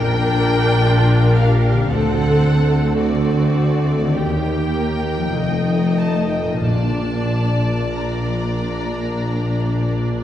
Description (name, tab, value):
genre	classical, slow romantic movement for symphony orchestra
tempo	45-57 BPM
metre	4/4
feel	rubato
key	Bb major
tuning	A4 = 440 Hz
part	rich chamber violin section	melody	0.0-10.2 s	D5 to Bb5	-28 LUFS	left 2 dB	none
part	rich chamber violin section	second line	0.0-10.2 s	F4 to Eb5	-28 LUFS	left 2 dB	none
part	rich symphonic viola section	accompaniment	0.0-10.2 s	A3 to Bb4	-23 LUFS	equal	none
part	concert harp	arpeggios	0.0-10.2 s	Bb2 to Bb4	-24 LUFS	left 3 dB	none
part	rich chamber cello section	bass	0.0-10.2 s	D2 to Bb2	-24 LUFS	right 1 dB	none
part	rich chamber double bass section	bass	0.0-10.2 s	F1 to Eb2	-22 LUFS	equal	none
part	warm tuba	bass	0.0-10.2 s	F1 to Eb2	-23 LUFS	right 1 dB	none
part	timpani	percussion	6.6-8.5 s	Bb2	-26 LUFS	equal	none
room	wet scoring stage reverb, RT60 1.6 s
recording	heard from further back in the room, vinyl crackle, nothing above 10.7 kHz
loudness	-16 LUFS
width	side -11 dB against mid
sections	0.0-10.2 A section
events	none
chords	0.0 Bb; 1.9 D7; 4.2 Eb; 5.3 F7; 6.6 Bb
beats	0.84 | 1.90 2.98 4.17 5.34 | 6.61 7.93 9.21